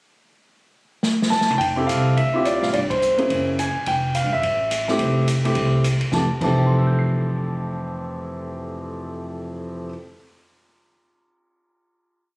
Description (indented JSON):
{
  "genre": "jazz piano trio",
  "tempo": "212 BPM",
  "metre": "4/4",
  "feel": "swing 60% on 8ths",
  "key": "F major",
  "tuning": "A4 = 440 Hz",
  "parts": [
    { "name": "open jazz drum kit", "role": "drums", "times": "1.0-6.5 s", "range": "crash cymbal, hi-hat, kick drum, ride cymbal, rim click, snare drum, toms", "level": "-26 LUFS", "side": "equal", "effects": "none" },
    { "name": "warm concert grand piano", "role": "melody", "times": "1.3-10.1 s", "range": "F2 to C7", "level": "-21 LUFS", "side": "equal", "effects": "none" },
    { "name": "upright bass", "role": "bass", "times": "1.6-9.9 s", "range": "F1 to D2", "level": "-24 LUFS", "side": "equal", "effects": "none" }
  ],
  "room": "light reverb",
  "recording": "recorded on a phone in the room, studio reverb, compression",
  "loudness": "-18 LUFS",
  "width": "side -26 dB against mid",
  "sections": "0.5-1.6 pickup bar; 1.6-6.1 A section; 6.1-8.4 final chord",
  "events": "drum fill 1.0-1.6; band accent 2.9",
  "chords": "0.5 N.C.; 1.6 Fmaj9; 2.2 Dm11; 2.7 Gm; 3.3 Gb9; 3.9 Fmaj9",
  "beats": "| 0.46 0.75 1.03 1.31 | 1.60 1.88 2.17 2.45 | 2.73 3.02 3.30 3.59 | 3.87 4.15 4.44 4.72 | 5.00 5.29 5.57 5.85 | 6.13 6.42 6.70 6.98 | 7.26 7.54 7.83 8.11"
}